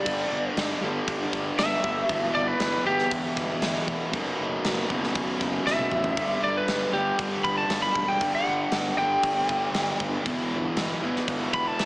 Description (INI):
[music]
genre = hard rock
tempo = 118 BPM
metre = 4/4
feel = straight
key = unclear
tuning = A4 = 442 Hz
[part]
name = lightly driven lead guitar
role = melody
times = 0.0-11.9 s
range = G4 to B5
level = -26 LUFS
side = equal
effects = none
[part]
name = distorted electric guitar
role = riff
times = 0.0-11.9 s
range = B1 to G3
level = -28 LUFS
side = equal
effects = distortion
[part]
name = fuzz fingered electric bass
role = bass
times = 0.1-11.9 s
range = E1 to A1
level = -35 LUFS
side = equal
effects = overdrive
[part]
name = gated 80s drum kit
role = drums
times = 0.1-11.9 s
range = crash cymbal, kick drum, snare drum, toms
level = -30 LUFS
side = equal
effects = none
[sound]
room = moderate lush hall reverb, RT60 2.0 s, small room ambience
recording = big arena sound, small speaker sound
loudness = -23 LUFS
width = side -23 dB against mid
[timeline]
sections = 0.0-11.9 A section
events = lead electric guitar solo 0.0-11.9; drum fill 5.7-6.2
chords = 0.0 G5; 2.1 Em/G; 4.1 B5/F#; 6.2 G5; 10.3 Em/G